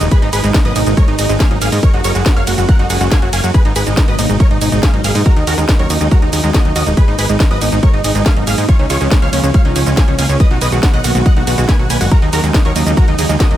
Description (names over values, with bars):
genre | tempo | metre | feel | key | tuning
uplifting trance | 140 BPM | 4/4 | straight | G# dorian | A4 = 436 Hz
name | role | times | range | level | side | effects
big supersaw lead | melody | 0.0-13.6 s | C#4 to G#5 | -21 LUFS | right 1 dB | sidechain pumping, tape echo
wide unison pluck | second line | 0.0-13.6 s | C#5 to G#6 | -25 LUFS | right 1 dB | sidechain pumping, tape echo
analog string pad | sustained chords | 0.0-13.6 s | B2 to F#4 | -22 LUFS | right 1 dB | ensemble chorus, sidechain pumping
analog pluck | arpeggios | 0.0-13.5 s | E#3 to G#4 | -23 LUFS | right 4 dB | chorus, sidechain pumping, tape echo
plucky analog bass | bass | 0.0-13.6 s | D#1 to G#2 | -16 LUFS | equal | sidechain pumping
house drum kit | drums | 0.0-13.6 s | hi-hat, ride cymbal, shaker, snare drum | -20 LUFS | right 1 dB | none
electronic kick drum | drums | 0.1-13.5 s | none | -11 LUFS | equal | none
room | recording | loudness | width
digital ambience | none | -10 LUFS | side -12 dB against mid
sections
0.0-13.6 A section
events
none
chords
0.1 G#m; 1.8 F#; 3.5 G#m; 5.3 D#m7; 7.0 G#m; 8.7 C#; 10.4 B; 12.1 D#m7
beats
| 0.12 0.54 0.97 1.40 | 1.83 2.26 2.69 3.12 | 3.54 3.97 4.40 4.83 | 5.26 5.69 6.12 6.54 | 6.97 7.40 7.83 8.26 | 8.69 9.12 9.54 9.97 | 10.40 10.83 11.26 11.69 | 12.12 12.54 12.97 13.40